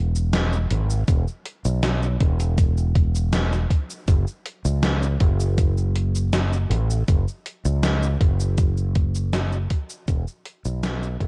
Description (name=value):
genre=vaporwave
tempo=80 BPM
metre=4/4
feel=straight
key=E major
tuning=A4 = 440 Hz
part: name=fretless electric bass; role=bass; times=0.0-11.3 s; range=E1 to C#2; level=-24 LUFS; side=equal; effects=none
part: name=gated 80s digital drum machine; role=drums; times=0.2-11.3 s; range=cabasa, hi-hat, snare drum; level=-29 LUFS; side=equal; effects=gated reverb, gated reverb snare
part: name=electronic kick drum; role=drums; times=1.1-11.3 s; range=none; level=-21 LUFS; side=equal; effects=none
room=digital ambience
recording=dark, warm production, cassette tape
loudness=-22 LUFS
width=mono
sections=0.0-11.3 A section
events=fade-out 8.1-11.3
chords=none